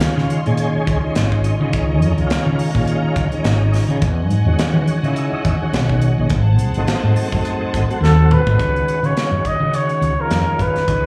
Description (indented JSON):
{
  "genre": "electric jazz fusion",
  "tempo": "105 BPM",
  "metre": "4/4",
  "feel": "swing 56% on 16ths",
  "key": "Db major",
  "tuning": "A4 = 442 Hz",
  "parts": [
    { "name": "tonewheel organ", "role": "accompaniment", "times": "0.0-11.1 s", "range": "Eb3 to Ab4", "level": "-24 LUFS", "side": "equal", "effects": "chorus vibrato, fast rotary speaker, slapback echo" },
    { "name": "clear symphonic string section", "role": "sustained chords", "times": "0.0-8.6 s", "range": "F4 to C6", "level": "-32 LUFS", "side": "equal", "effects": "none" },
    { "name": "crisp fusion drum kit", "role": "drums", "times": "0.0-11.0 s", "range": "hi-hat, kick drum, snare drum, toms", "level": "-25 LUFS", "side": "equal", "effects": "none" },
    { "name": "woody fretless electric bass", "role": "bass", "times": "0.2-11.1 s", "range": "Ab1 to E3", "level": "-19 LUFS", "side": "equal", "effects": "none" },
    { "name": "mellow trumpet", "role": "melody", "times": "8.0-11.1 s", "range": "A4 to Eb5", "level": "-22 LUFS", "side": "equal", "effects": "slapback echo" }
  ],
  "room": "small room ambience",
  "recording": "live gig heard through the venue's PA, club reverb, studio reverb",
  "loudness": "-17 LUFS",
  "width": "mono",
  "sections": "0.0-8.6 A section; 8.6-11.1 B section",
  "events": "drum fill 8.0-8.6",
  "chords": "0.0 Dbmaj9; 4.0 Emaj9; 6.3 Ab7b9; 8.6 Db9sus4"
}